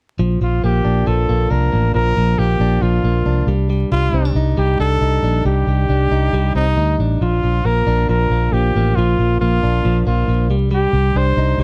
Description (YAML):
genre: indie pop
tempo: 137 BPM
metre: 4/4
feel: straight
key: Bb major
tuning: A4 = 442 Hz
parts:
  - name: direct-recorded clean electric guitar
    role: arpeggios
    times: 0.2-11.6 s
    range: F3 to Eb4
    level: -23 LUFS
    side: equal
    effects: slapback echo
  - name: vintage muted fingered electric bass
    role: bass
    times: 0.2-11.6 s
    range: A1 to D2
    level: -19 LUFS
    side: equal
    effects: none
  - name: clear trumpet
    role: melody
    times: 0.4-11.6 s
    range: Eb4 to C5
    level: -23 LUFS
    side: equal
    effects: slapback echo
room: light reverb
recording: dark, warm production, vinyl crackle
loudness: -17 LUFS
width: mono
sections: 0.2-7.2 A section; 7.2-11.6 B section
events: none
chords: 0.2 Bb; 3.5 Cmadd9; 7.2 Bb; 10.5 Cmadd9